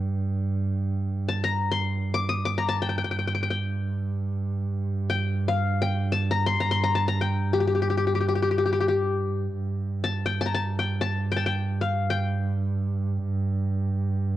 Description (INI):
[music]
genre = Turkish makam ensemble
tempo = free time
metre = none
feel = none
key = G makam nihavent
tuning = A4 = 440 Hz
[part]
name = clear double bass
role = drone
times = 0.0-14.4 s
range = G2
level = -26 LUFS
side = right 2 dB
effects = cassette tape
[part]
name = qanun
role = melody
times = 1.3-13.3 s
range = G4 to Eb6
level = -26 LUFS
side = left 5 dB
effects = cassette tape
[sound]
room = light reverb, studio reverb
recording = home recording on cassette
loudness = -24 LUFS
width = side -13 dB against mid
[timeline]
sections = 0.0-9.5 A section; 9.5-14.4 A section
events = none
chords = none